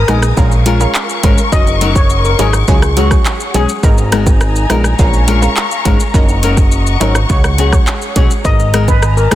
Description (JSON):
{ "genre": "dancehall", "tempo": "104 BPM", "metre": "4/4", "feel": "straight", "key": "G# dorian", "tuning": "A4 = 440 Hz", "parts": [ { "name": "steel pan", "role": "melody", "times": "0.0-3.7, 8.4-9.3 s", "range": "E#4 to D#5", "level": "-19 LUFS", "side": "left 3 dB", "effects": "tape echo" }, { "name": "warm studio string section", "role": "sustained chords", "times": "0.0-9.3 s", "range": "B3 to D#6", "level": "-20 LUFS", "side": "left 4 dB", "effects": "sidechain pumping" }, { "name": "fat analog bass", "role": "bass", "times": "0.0-9.3 s", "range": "F#1 to C#2", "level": "-13 LUFS", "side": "equal", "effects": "none" }, { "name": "analog pluck", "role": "accompaniment", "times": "0.1-9.3 s", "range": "F#3 to C#5", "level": "-21 LUFS", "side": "right 3 dB", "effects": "chorus" }, { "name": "flamenco guitar", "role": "arpeggios", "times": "0.1-9.3 s", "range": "F#3 to A#4", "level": "-19 LUFS", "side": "left 5 dB", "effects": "none" }, { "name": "afro-pop drum kit", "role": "drums", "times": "0.1-9.3 s", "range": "handclaps, hi-hat, kick drum, rim click, shaker", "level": "-13 LUFS", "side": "equal", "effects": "soft clipping on snare" }, { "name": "bongos", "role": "percussion", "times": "0.1-9.3 s", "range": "none", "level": "-27 LUFS", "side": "right 8 dB", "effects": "none" } ], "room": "small room ambience", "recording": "dense, heavily limited modern master", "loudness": "-9 LUFS", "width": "side -13 dB against mid", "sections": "0.0-9.3 A section", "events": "none", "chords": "0.4 A#m7; 1.5 F#6; 2.7 C#sus4; 3.8 G#madd9; 5.0 A#m7; 6.1 F#6; 7.3 C#sus4; 8.4 G#madd9" }